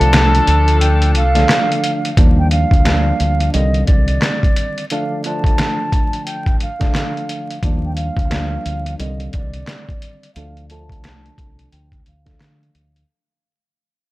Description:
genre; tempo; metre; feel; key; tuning
hip hop, boom-bap hip-hop; 88 BPM; 4/4; swing 62% on 16ths; unclear; A4 = 440 Hz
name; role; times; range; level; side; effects
mellow concert flute; melody; 0.0-13.0 s; D5 to A5; -22 LUFS; right 1 dB; high-pass filter, low-pass filter, digital delay
tine electric piano; accompaniment; 0.0-13.0 s; Eb2 to D4; -23 LUFS; equal; overdrive, fast stereo tremolo, high-pass filter, low-pass filter
clear saxophone section; stabs; 0.0-1.8 s; F3 to A4; -22 LUFS; left 3 dB; high-pass filter, low-pass filter, digital delay
deep dub fingered electric bass; bass; 0.0-13.0 s; C2 to D3; -16 LUFS; equal; none
trip hop sampler-style drum kit; drums; 0.0-13.1 s; handclaps, hi-hat, kick drum, snare drum; -17 LUFS; equal; vintage 12-bit sampler grit
room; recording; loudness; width
little or no reverb; vinyl crackle; -14 LUFS; side -18 dB against mid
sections
0.0-2.2 A section; 2.2-13.1 B section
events
break 0.0-2.2, 4.9-7.6; fade-out 2.2-13.1; filter sweep 2.2-13.1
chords
0.0 Dm; 2.2 Ebmaj7; 3.5 Cmadd9; 4.9 Dm; 7.6 Ebmaj7; 9.0 Cmadd9; 10.4 Dm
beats
0.13 0.81 1.49 | 2.17 2.85 3.54 4.22 | 4.90 5.58 6.26 6.95 | 7.63 8.31 8.99 9.67 | 10.36 11.04 11.72 12.40

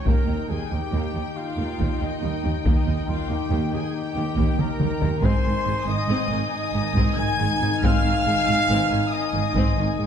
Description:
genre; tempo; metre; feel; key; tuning
cinematic, epic orchestral film score; 93 BPM (dotted quarters); 12/8; straight; Eb major; A4 = 439 Hz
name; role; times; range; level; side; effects
warm symphonic violin section; second line; 0.0-10.1 s; Eb5 to Ab6; -32 LUFS; left 4 dB; none
mellow French horn section; sustained chords; 0.0-10.1 s; Eb3 to Eb4; -30 LUFS; left 5 dB; none
clear trumpet section; stabs; 0.0-10.1 s; Eb4 to Ab5; -28 LUFS; equal; none
warm symphonic violin section; melody; 0.1-10.1 s; G5 to Ab5; -34 LUFS; left 5 dB; none
rich symphonic viola section; accompaniment; 0.1-10.1 s; Eb3 to Eb4; -32 LUFS; right 2 dB; none
warm symphonic cello section; bass; 0.1-10.1 s; Eb2 to Ab2; -28 LUFS; right 2 dB; none
warm symphonic double bass section; bass; 0.1-10.1 s; Ab1 to Eb2; -28 LUFS; right 4 dB; none
taiko ensemble; drums; 0.1-10.0 s; none; -24 LUFS; left 1 dB; none
room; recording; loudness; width
wet scoring stage reverb, RT60 2.0 s; dark, warm production; -20 LUFS; side -8 dB against mid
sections
0.0-10.1 A section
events
drum fill 4.6-5.2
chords
0.1 Eb; 5.2 Ab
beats
| 0.06 0.71 1.36 2.01 | 2.66 3.30 3.95 4.59 | 5.24 5.88 6.52 7.18 | 7.83 8.47 9.12 9.77

